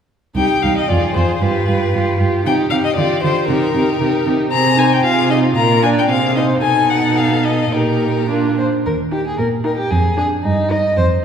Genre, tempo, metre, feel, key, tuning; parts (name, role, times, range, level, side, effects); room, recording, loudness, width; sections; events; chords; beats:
quick classical-period movement for string quartet; 114 BPM; 2/4; rubato; C minor, Eb major from 4.5 s; A4 = 439 Hz
rich violin; melody; 0.4-10.9 s; Bb4 to Bb5; -19 LUFS; left 5 dB
warm violin; second line; 0.4-11.1 s; Eb4 to Eb5; -21 LUFS; equal
warm viola; accompaniment; 0.4-10.9 s; C4 to F4; -20 LUFS; right 1 dB
dark cello; bass; 0.4-11.2 s; C2 to D3; -18 LUFS; right 3 dB
wet scoring stage reverb, RT60 2.2 s; heard from further back in the room; -13 LUFS; side -8 dB against mid
0.4-8.8 A section; 8.8-11.2 B section
0.4 Cm; 0.9 Fm; 1.4 G7; 2.5 Cm; 3.0 G5; 3.5 Cm; 5.1 Fm7/C; 5.6 Bb; 6.1 Ab/C; 6.6 B7; 7.7 Eb/Bb; 8.3 Bb; 8.8 Eb; 9.9 Ddim/F; 10.4 Eb/G
| 0.36 0.89 | 1.42 1.94 | 2.46 2.98 | 3.49 4.01 | 4.52 5.05 | 5.58 6.11 | 6.64 7.18 | 7.73 8.29 | 8.85 9.38 | 9.91 10.44 | 10.97